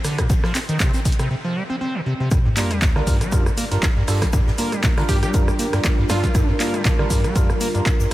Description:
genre	acid house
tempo	119 BPM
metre	4/4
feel	swing 56% on 16ths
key	G minor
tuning	A4 = 440 Hz
part	dark analog pad	sustained chords	0.0-8.1 s	G3 to C5	-29 LUFS	right 1 dB	chorus, phaser, sidechain pumping
part	liquid acid bass	riff	0.0-8.1 s	F2 to C4	-23 LUFS	equal	chorus, overdrive, sidechain pumping, tape echo
part	punchy analog drum machine	drums	0.0-8.1 s	handclaps, hi-hat, rim click, shaker, snare drum	-26 LUFS	equal	none
part	electronic kick drum	drums	0.2-8.0 s	none	-19 LUFS	equal	none
part	oversized low-tuned drum kit	drums	0.3-8.1 s	hi-hat, shaker, snare drum	-38 LUFS	left 2 dB	none
part	sub drop	sound effects	2.3-4.3 s	none	-27 LUFS	equal	none
part	barky tine electric piano	stabs	2.6-8.1 s	G3 to Bb4	-28 LUFS	right 3 dB	lush chorus, tape echo
part	plucky unison lead	melody	5.1-6.5 s	F4 to G4	-30 LUFS	right 1 dB	phaser, tape echo
room	light reverb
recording	none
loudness	-17 LUFS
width	side -16 dB against mid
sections	0.0-2.3 A section; 2.3-8.1 B section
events	break 1.3-2.3; drop 2.3-8.1; impact 2.3-4.3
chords	0.0 Cm7; 2.3 Gm7

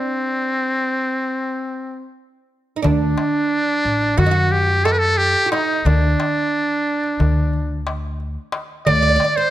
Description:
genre	Turkish makam ensemble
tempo	179 BPM (eighths)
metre	9/8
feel	straight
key	D makam hicaz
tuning	A4 = 440 Hz
part	trumpet with metal mute	melody	0.0-9.5 s	C4 to D5	-19 LUFS	equal	none
part	oud	second line	2.8-9.5 s	D4 to D5	-23 LUFS	right 6 dB	none
part	upright bass	bass	2.8-9.2 s	A1 to F#2	-20 LUFS	equal	none
part	darbuka	percussion	2.8-9.4 s	none	-23 LUFS	left 2 dB	none
room	light reverb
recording	close, detailed microphones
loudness	-16 LUFS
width	side -13 dB against mid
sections	0.0-2.8 A section; 2.8-9.5 B section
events	stop 0.0-2.8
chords	none

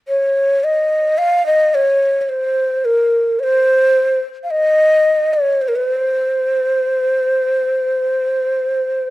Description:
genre	turkish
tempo	free time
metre	none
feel	none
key	C makam kurdi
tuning	A4 = 440 Hz
part	breathy mellow ney	solo	0.1-9.1 s	Bb4 to F5	-14 LUFS	equal	none
room	light reverb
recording	close, detailed microphones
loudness	-14 LUFS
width	side -17 dB against mid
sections	0.0-9.1 A section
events	none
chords	none

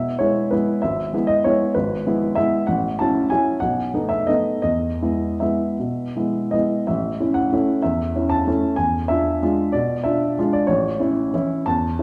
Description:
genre	classical, piano waltz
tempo	149-206 BPM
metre	3/4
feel	rubato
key	E major, A major from 6.9 s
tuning	A4 = 440 Hz
part	warm upright piano	solo	0.0-12.0 s	G#1 to A5	-21 LUFS	equal	none
room	wet recital hall reverb, RT60 1.5 s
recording	heard from further back in the room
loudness	-21 LUFS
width	mono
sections	0.0-6.9 A section; 6.9-12.0 B section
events	none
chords	0.0 E; 0.8 E/G#; 2.7 F#m7/A; 3.6 B7; 4.6 E; 6.9 A; 8.8 E7b9; 10.7 A

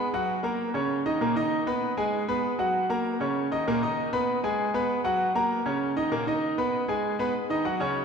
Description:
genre	latin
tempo	195 BPM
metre	4/4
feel	straight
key	G# minor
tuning	A4 = 440 Hz
part	bright grand piano	solo	0.0-8.0 s	A#2 to B5	-24 LUFS	equal	none
room	wet church reverb, RT60 3.0 s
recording	recorded in a church or concert hall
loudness	-24 LUFS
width	side -6 dB against mid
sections	0.0-7.3 A section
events	none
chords	0.0 F#; 0.6 A#madd11/C#; 1.2 D#5; 1.8 G#m; 2.4 F#add11; 3.0 A#madd11/C#; 3.7 D#5; 4.3 G#m; 4.9 F#add11; 5.5 A#madd11/C#; 6.1 D#5; 6.7 G#m; 7.3 C#sus24

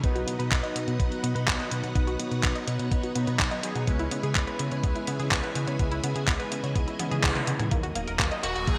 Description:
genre	italo disco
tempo	125 BPM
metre	4/4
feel	straight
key	C# dorian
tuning	A4 = 440 Hz
part	string machine, full ensemble	sustained chords	0.0-8.8 s	B3 to D#6	-38 LUFS	equal	ensemble chorus
part	analog pluck	arpeggios	0.0-8.8 s	A#3 to F#5	-38 LUFS	equal	chorus, delay
part	analog synth brass	stabs	0.0-8.8 s	F#3 to B4	-37 LUFS	equal	chorus, cassette tape, delay
part	chorused synth bass	bass	0.0-8.8 s	D#1 to C#3	-34 LUFS	equal	tube saturation
part	clean 12-bit digital drum machine	drums	0.0-8.8 s	handclaps, hi-hat, toms	-32 LUFS	equal	high-pass filter on hats, studio reverb, high-pass filter on cymbals, high-pass filter on snare, high-pass filter on toms, gated reverb
part	electronic kick drum	drums	0.0-8.8 s	none	-30 LUFS	equal	studio reverb
part	riser	sound effects	8.1-8.8 s	none	-41 LUFS	equal	none
part	smooth overdriven lead guitar	melody	8.4-8.8 s	F#4 to G#4	-31 LUFS	equal	none
room	wet plate reverb, RT60 1.8 s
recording	bright 1980s-style digital production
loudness	-27 LUFS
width	mono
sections	0.0-7.7 A section; 7.7-8.8 B section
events	filter sweep on synth arpeggio sound 0.0-7.7; drum fill 7.0-7.7; band accent 7.2; filter sweep on analog polysynth 7.7-8.8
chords	0.0 B; 3.9 C#m7; 7.7 D#m

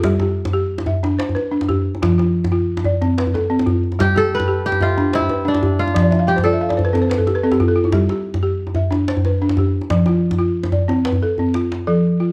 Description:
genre	west african traditional, West African string and xylophone music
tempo	122 BPM (dotted quarters)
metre	12/8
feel	straight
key	F lydian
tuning	A4 = 435 Hz
part	balafon	arpeggios	0.0-12.3 s	F3 to G5	-20 LUFS	equal	none
part	djembe	percussion	0.0-11.9 s	none	-22 LUFS	equal	none
part	kora	melody	4.0-7.8 s	D4 to B4	-22 LUFS	equal	none
room	moderate recital hall reverb, RT60 1.5 s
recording	close, detailed microphones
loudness	-18 LUFS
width	mono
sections	0.0-11.9 A section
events	balafon fill 6.0-7.9; drum fill 11.2-11.9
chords	0.0 G; 2.0 F; 4.0 G; 6.0 F; 7.9 G; 9.9 F

